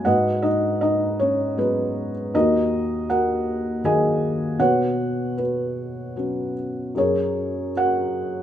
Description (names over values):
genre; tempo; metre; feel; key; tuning
classical, lyrical solo piano; 78 BPM; 3/4; rubato; unclear; A4 = 440 Hz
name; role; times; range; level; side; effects
felt-muted upright piano; solo; 0.0-8.4 s; D#2 to G#5; -20 LUFS; equal; none
room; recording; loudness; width
moderate recital hall reverb, RT60 1.4 s; minimal, uncompressed stereo recording; -20 LUFS; side -10 dB against mid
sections
0.0-8.4 A section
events
none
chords
0.1 G#m7; 2.3 D#m; 4.6 Bsus2; 7.0 F#add9